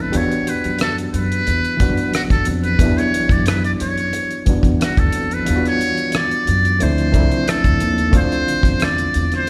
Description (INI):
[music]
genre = R&B, neo-soul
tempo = 90 BPM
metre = 4/4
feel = swing 53% on 16ths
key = unclear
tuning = A4 = 441 Hz
[part]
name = trumpet with metal mute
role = melody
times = 0.0-9.5 s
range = F#4 to D5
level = -23 LUFS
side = equal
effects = none
[part]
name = overdriven reed electric piano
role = accompaniment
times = 0.0-9.5 s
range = D3 to G4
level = -24 LUFS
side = equal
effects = fast tremolo
[part]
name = upright bass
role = bass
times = 0.0-9.4 s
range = C2 to F#2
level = -23 LUFS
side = equal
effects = none
[part]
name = damped 70s drum kit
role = drums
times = 0.1-9.5 s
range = hi-hat, kick drum, rim click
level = -22 LUFS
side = equal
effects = none
[sound]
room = moderate concert hall reverb, RT60 2.0 s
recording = recorded in a church or concert hall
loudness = -17 LUFS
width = mono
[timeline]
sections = 0.0-9.5 A section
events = none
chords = 0.1 Em9; 6.8 Dm9